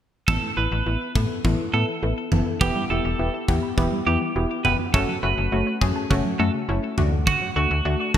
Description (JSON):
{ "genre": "synth-pop", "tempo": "103 BPM", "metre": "4/4", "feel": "straight", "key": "A major", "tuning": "A4 = 441 Hz", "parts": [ { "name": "twelve-string electric guitar", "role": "second line", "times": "0.3-8.1 s", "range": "F#4 to B4", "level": "-26 LUFS", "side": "right 5 dB", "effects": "ping-pong delay" }, { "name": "analog pluck", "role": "accompaniment", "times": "0.3-8.2 s", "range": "A3 to B4", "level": "-26 LUFS", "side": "left 2 dB", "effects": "chorus, low-pass filter" }, { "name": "analog pluck", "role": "arpeggios", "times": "0.3-8.1 s", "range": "C#3 to B5", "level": "-32 LUFS", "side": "right 1 dB", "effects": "chorus, low-pass filter, ping-pong delay" }, { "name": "slap-like FM bass", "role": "bass", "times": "0.3-8.2 s", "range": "E1 to D3", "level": "-24 LUFS", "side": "equal", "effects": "none" }, { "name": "gated 80s drum kit", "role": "drums", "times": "0.3-8.2 s", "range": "kick drum, toms", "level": "-24 LUFS", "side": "equal", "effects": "none" } ], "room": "moderate plate reverb, RT60 2.8 s", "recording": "bright 1980s-style digital production", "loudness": "-20 LUFS", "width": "side -10 dB against mid", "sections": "0.3-8.2 A section", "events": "filter sweep 0.3-8.2", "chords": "0.3 Asus2; 2.6 Em; 4.9 F#m; 7.0 D", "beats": "| 0.28 0.86 1.44 2.03 | 2.61 3.19 3.77 4.36 | 4.94 5.52 6.11 6.69 | 7.27 7.85" }